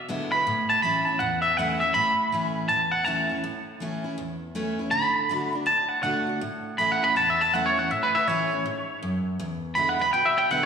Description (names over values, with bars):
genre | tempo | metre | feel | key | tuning
rock | 161 BPM | 4/4 | swing 63% on 8ths | A major | A4 = 440 Hz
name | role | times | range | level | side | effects
picked steel-string acoustic guitar | accompaniment | 0.0-10.7 s | E2 to F#4 | -30 LUFS | equal | slapback echo
twangy electric guitar | melody | 0.3-10.7 s | B4 to B5 | -22 LUFS | right 1 dB | spring reverb, slapback echo, tape echo
room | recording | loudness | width
light reverb | live gig heard through the venue's PA, recital hall reverb, small room ambience | -22 LUFS | side -6 dB against mid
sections
0.0-1.9 A section; 1.9-10.7 A section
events
clean electric guitar solo 0.0-10.7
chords
0.5 A; 4.9 D; 6.4 A; 9.4 E7